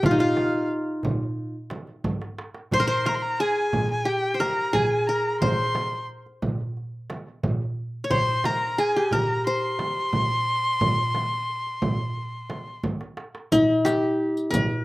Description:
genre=Arabic maqam ensemble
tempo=89 BPM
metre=4/4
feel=straight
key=C minor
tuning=A4 = 441 Hz
part: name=qanun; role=melody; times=0.0-14.8 s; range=Eb4 to Db5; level=-23 LUFS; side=left 1 dB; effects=none
part: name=rich erhu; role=second line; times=0.0-12.8 s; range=F5 to C6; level=-26 LUFS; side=left 1 dB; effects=none
part: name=darbuka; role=percussion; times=0.0-14.7 s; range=none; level=-31 LUFS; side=right 1 dB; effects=none
part: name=frame drum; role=percussion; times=0.0-14.7 s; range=none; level=-28 LUFS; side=right 1 dB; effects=none
part: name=riq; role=percussion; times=13.5-14.7 s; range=none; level=-32 LUFS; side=left 2 dB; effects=none
room=little or no reverb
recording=recorded outdoors, with no room sound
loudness=-22 LUFS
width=side -19 dB against mid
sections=0.0-13.5 A section; 13.5-14.8 B section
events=drum fill 2.0-2.7, 12.8-13.5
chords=none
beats=| 0.04 0.71 1.38 2.05 | 2.72 3.39 4.07 4.74 | 5.41 6.09 6.76 7.44 | 8.11 8.79 9.46 10.14 | 10.82 11.49 12.17 12.84 | 13.52 14.20

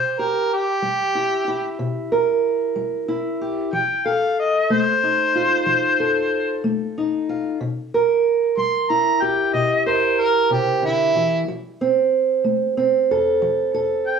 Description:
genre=acoustic country blues, solo or duo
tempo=62 BPM (dotted quarters)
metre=12/8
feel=straight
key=C mixolydian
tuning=A4 = 441 Hz
part: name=mellow harmonica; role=melody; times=0.0-14.2 s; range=E4 to C6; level=-19 LUFS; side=equal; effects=plate reverb
part: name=fingerpicked steel-string acoustic guitar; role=accompaniment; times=0.0-14.2 s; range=C3 to Bb4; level=-20 LUFS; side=right 2 dB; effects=none
room=wet studio reverb, RT60 0.8 s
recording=heard from further back in the room, small room ambience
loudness=-18 LUFS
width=side -6 dB against mid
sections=0.0-14.2 A section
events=none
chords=0.0 C7; 3.7 F7; 7.6 C7; 11.5 F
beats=0.82 1.79 2.76 | 3.73 4.70 5.67 6.64 | 7.60 8.57 9.54 10.51 | 11.48 12.45 13.41

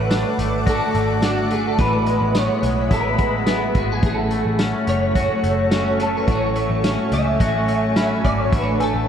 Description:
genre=dream pop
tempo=107 BPM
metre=4/4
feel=straight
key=unclear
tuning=A4 = 440 Hz
part: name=electric guitar at the edge of break-up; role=melody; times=0.0-9.1 s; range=F#4 to E5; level=-23 LUFS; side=equal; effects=ensemble chorus, digital delay
part: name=clean electric guitar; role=accompaniment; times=0.0-9.1 s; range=A2 to F#4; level=-26 LUFS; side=right 3 dB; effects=harmonic tremolo, analog chorus
part: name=ethereal airy pad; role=sustained chords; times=0.0-9.1 s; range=G#4 to D6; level=-26 LUFS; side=left 1 dB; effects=ensemble chorus, built-in reverb
part: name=twangy electric guitar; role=arpeggios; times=0.0-9.1 s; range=A2 to F#4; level=-25 LUFS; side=left 4 dB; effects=analog chorus, digital delay
part: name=vintage muted picked electric bass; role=bass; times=0.0-9.1 s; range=F#1 to C#2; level=-24 LUFS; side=equal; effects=none
part: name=soft synth bell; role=texture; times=0.0-4.3, 8.0-9.1 s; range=F#5 to F#6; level=-33 LUFS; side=left 1 dB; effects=chorus, phaser, digital delay
part: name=vintage drum kit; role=drums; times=0.1-8.9 s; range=hi-hat, kick drum, snare drum, tambourine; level=-23 LUFS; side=equal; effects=none
room=wet scoring stage reverb, RT60 1.8 s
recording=none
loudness=-17 LUFS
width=side -8 dB against mid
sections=0.0-9.1 A section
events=none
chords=0.0 D; 1.8 Eadd9/A; 4.0 F#m; 8.5 D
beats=0.11 0.67 1.23 | 1.79 2.35 2.91 3.47 | 4.04 4.60 5.16 5.72 | 6.28 6.84 7.40 7.96 | 8.52 9.08

